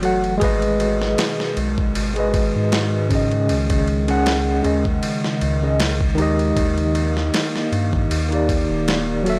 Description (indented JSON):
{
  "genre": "trip hop",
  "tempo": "78 BPM",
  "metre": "4/4",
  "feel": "swing 54% on 16ths",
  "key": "unclear",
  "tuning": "A4 = 440 Hz",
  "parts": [
    { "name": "tine electric piano", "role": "accompaniment", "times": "0.0-9.4 s", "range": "C#3 to F#5", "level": "-24 LUFS", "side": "equal", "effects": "medium tremolo, vintage 12-bit sampler grit, tape echo" },
    { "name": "warbly tape-like pad", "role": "sustained chords", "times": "0.0-9.4 s", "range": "B2 to F#4", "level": "-28 LUFS", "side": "equal", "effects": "chorus, built-in reverb" },
    { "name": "soft dub sub bass", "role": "bass", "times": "0.0-9.4 s", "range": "D#1 to G#2", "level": "-26 LUFS", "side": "equal", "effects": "none" },
    { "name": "dusty soul sampler-style drum kit", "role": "drums", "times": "0.0-9.4 s", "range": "kick drum, ride cymbal, snare drum", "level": "-26 LUFS", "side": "equal", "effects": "overdrive, high-pass filter on cymbals, high-pass filter on snare, high-pass filter on hats, high-pass filter on kick" }
  ],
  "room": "light reverb",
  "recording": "dry, gritty hardware recording",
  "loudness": "-20 LUFS",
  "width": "mono",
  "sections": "0.4-9.4 A section",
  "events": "none",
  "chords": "0.4 G#m; 3.5 C#sus2; 6.6 D#maj7"
}